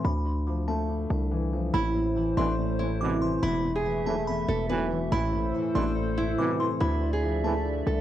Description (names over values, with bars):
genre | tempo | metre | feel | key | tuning
hip hop | 142 BPM | 4/4 | half-time | A harmonic minor | A4 = 440 Hz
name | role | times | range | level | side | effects
delicate synth tine bell | second line | 0.0-7.6 s | A5 to D6 | -35 LUFS | equal | chorus, phaser, cassette tape, tape echo
dark concert grand piano | accompaniment | 0.0-8.0 s | E2 to A3 | -31 LUFS | left 3 dB | cassette tape
hard-hitting 808-style bass | bass | 0.0-8.0 s | E1 to D2 | -29 LUFS | equal | none
nylon-string guitar | melody | 1.7-8.0 s | D4 to B4 | -30 LUFS | right 1 dB | cassette tape
warbly tape-like pad | sustained chords | 1.7-8.0 s | A3 to E5 | -36 LUFS | right 2 dB | chorus, built-in reverb, cassette tape
mellow brass ensemble | stabs | 2.4-7.5 s | A1 to E3 | -34 LUFS | right 5 dB | cassette tape, tape echo
room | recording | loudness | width
moderate small room reverb, RT60 0.5 s | home recording on cassette | -25 LUFS | side -12 dB against mid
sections
0.0-1.7 A section; 1.7-8.0 B section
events
none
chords
0.0 Dmadd9; 1.7 Amadd9; 3.4 Esus4; 5.1 Amadd9; 6.8 Dmadd9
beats
| 0.05 0.47 0.89 1.31 | 1.74 2.16 2.58 3.01 | 3.43 3.85 4.27 4.70 | 5.12 5.54 5.96 6.39 | 6.81 7.23 7.65